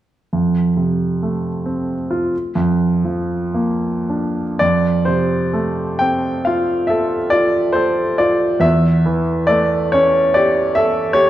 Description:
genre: classical, romantic nocturne for solo piano.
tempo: 35-51 BPM (dotted quarters).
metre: 9/8.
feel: rubato.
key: F major.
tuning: A4 = 440 Hz.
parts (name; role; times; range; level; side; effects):
bright concert grand piano; solo; 0.3-11.3 s; E2 to G5; -15 LUFS; equal; none.
room: wet recital hall reverb, RT60 1.6 s.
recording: dark, warm production.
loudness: -15 LUFS.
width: side -13 dB against mid.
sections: 0.3-4.6 A section; 4.6-11.3 B section.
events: none.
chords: 0.3 F; 2.3 Bb/F; 4.6 F; 8.6 A7/E.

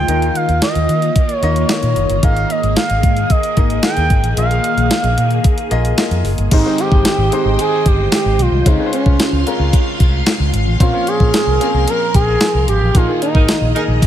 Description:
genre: 1980s-style pop.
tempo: 112 BPM.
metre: 4/4.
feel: straight.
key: unclear.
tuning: A4 = 442 Hz.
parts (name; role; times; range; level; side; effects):
expressive synth lead; melody; 0.0-13.7 s; Db4 to G5; -18 LUFS; right 2 dB; chorus, ping-pong delay.
clear concert grand piano; accompaniment; 0.0-14.1 s; Ab2 to Eb5; -24 LUFS; left 5 dB; none.
phased string machine; sustained chords; 0.0-14.1 s; Eb3 to C6; -23 LUFS; left 1 dB; ensemble chorus, phaser.
vintage muted fingered electric bass; bass; 0.0-14.0 s; Gb1 to Eb3; -17 LUFS; equal; none.
clean 12-bit digital drum machine; drums; 0.1-14.1 s; crash cymbal, hi-hat, kick drum, snare drum, tambourine; -15 LUFS; equal; overdrive.
overdriven semi-hollow guitar; accompaniment; 6.5-14.1 s; Ab2 to Eb4; -25 LUFS; right 1 dB; wide subtle chorus.
warm horn section; stabs; 13.3-13.8 s; Eb4 to Bb4; -23 LUFS; right 2 dB; none.
room: digital ambience.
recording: none.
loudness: -12 LUFS.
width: side -11 dB against mid.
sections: 0.0-6.5 A section; 6.5-14.1 B section.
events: band accent 12.9-14.1.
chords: 0.1 Ebsus2; 2.2 Absus2; 4.4 Bb7sus4; 6.5 Abmaj7; 8.7 Dbmaj7; 10.8 Bbmadd9; 12.9 Ebsus4.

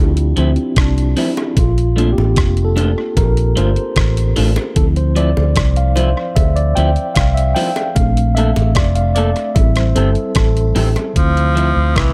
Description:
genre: lovers rock reggae.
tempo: 75 BPM.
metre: 4/4.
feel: straight.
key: D minor.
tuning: A4 = 439 Hz.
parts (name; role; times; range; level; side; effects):
mellow tine electric piano; accompaniment; 0.0-12.1 s; D3 to G5; -22 LUFS; equal; none.
vintage muted fingered electric bass; bass; 0.0-12.1 s; F1 to D2; -17 LUFS; equal; none.
detuned 8-bit digital drum machine; drums; 0.2-12.1 s; hi-hat, kick drum, rim click; -19 LUFS; equal; tape echo.
electric guitar through a small old amp; stabs; 0.4-11.7 s; F3 to A4; -24 LUFS; equal; none.
bongos; percussion; 1.2-11.1 s; none; -30 LUFS; equal; none.
raspy tenor saxophone; melody; 11.2-12.1 s; E3 to F3; -20 LUFS; equal; tape echo.
room: little or no reverb.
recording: none.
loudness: -15 LUFS.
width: mono.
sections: 0.0-11.2 A section.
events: tine electric piano solo 0.0-11.2.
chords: 0.0 Dm9; 1.6 Bbmaj7; 4.8 Dm9; 8.0 Bbmaj7; 9.6 Am7; 11.2 Dm9.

